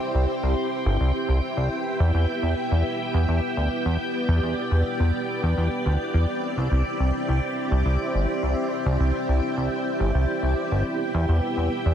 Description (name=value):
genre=synthwave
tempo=105 BPM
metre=4/4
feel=straight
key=E minor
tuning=A4 = 440 Hz
part: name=string machine, full ensemble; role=sustained chords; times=0.0-11.9 s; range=B3 to G5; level=-25 LUFS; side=equal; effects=ensemble chorus
part: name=chorused synth bass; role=bass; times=0.1-11.9 s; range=G1 to E2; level=-21 LUFS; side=equal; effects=none
room=light reverb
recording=dense, heavily limited modern master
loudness=-22 LUFS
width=side -9 dB against mid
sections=0.0-11.9 A section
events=none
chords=0.0 C; 1.7 Em; 6.3 Cadd9; 10.9 Em